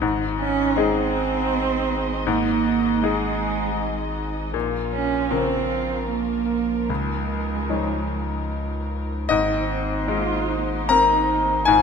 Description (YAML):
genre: neoclassical piano and strings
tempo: 73-81 BPM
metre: 3/4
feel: rubato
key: Ab major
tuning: A4 = 442 Hz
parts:
  - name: bright concert grand piano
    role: accompaniment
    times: 0.0-11.8 s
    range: Db2 to Bb5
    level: -23 LUFS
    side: left 5 dB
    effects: none
  - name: muted chamber string section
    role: sustained chords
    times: 0.0-11.8 s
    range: F3 to Eb5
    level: -33 LUFS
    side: right 2 dB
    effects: none
  - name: saturated sub bass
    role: bass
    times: 0.0-11.8 s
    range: Ab1 to Db2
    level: -30 LUFS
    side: equal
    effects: none
  - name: muted cello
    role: second line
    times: 0.4-11.8 s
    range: Ab3 to F4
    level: -25 LUFS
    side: right 8 dB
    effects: none
room: wet recital hall reverb, RT60 1.7 s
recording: minimal, uncompressed stereo recording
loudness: -20 LUFS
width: side -6 dB against mid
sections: 0.0-9.3 A section; 9.3-11.8 B section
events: none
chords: 0.0 Ab; 4.5 Bbm; 6.9 Dbadd9; 9.3 Abadd9